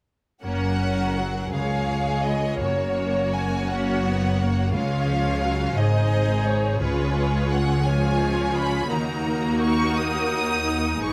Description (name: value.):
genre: classical, slow romantic movement for symphony orchestra.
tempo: 57 BPM (dotted quarters).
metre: 6/8.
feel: rubato.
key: F# major.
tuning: A4 = 444 Hz.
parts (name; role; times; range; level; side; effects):
rich studio violin section; melody; 0.4-11.1 s; B4 to D#6; -31 LUFS; equal; none.
warm symphonic violin section; second line; 0.4-11.1 s; E#4 to C#5; -32 LUFS; equal; none.
bright symphonic viola section; accompaniment; 0.4-11.1 s; E#3 to E#4; -31 LUFS; equal; none.
concert harp; arpeggios; 0.4-11.1 s; F#2 to D#5; -32 LUFS; equal; none.
rich symphonic cello section; bass; 0.4-11.1 s; C#2 to C#3; -30 LUFS; equal; none.
rich symphonic double bass section; bass; 0.4-11.1 s; F#1 to D#2; -30 LUFS; equal; none.
room: light reverb.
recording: close, detailed microphones.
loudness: -23 LUFS.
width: mono.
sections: 0.4-11.1 A section.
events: none.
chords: 0.4 F#; 1.5 C#7; 2.6 F#; 4.7 C#; 5.8 G#7; 6.8 C#; 8.9 D#m.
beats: | 0.44 1.54 | 2.60 3.68 | 4.73 5.77 | 6.82 7.87 | 8.92 9.98 | 11.04.